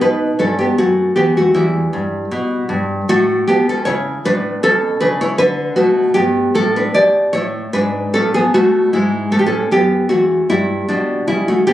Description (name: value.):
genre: classical, baroque-style dance for nylon-string guitar.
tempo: 77 BPM.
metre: 4/4.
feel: rubato.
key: unclear.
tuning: A4 = 440 Hz.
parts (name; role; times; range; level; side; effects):
nylon-string guitar; solo; 0.0-11.7 s; E2 to D5; -13 LUFS; equal; none.
room: moderate studio reverb, RT60 0.8 s.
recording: recorded on a phone in the room, club reverb, compression.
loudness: -13 LUFS.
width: side -13 dB against mid.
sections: 0.0-11.7 A section.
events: none.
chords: 0.0 B7; 1.6 Em; 3.1 A; 4.6 Bm; 6.2 Em7/G; 7.7 Bm13/G#; 9.3 A; 10.9 G/B.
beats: | 0.01 0.78 1.55 2.32 | 3.10 3.87 4.63 5.40 | 6.17 6.96 7.74 8.54 | 9.32 10.10 10.88 11.67.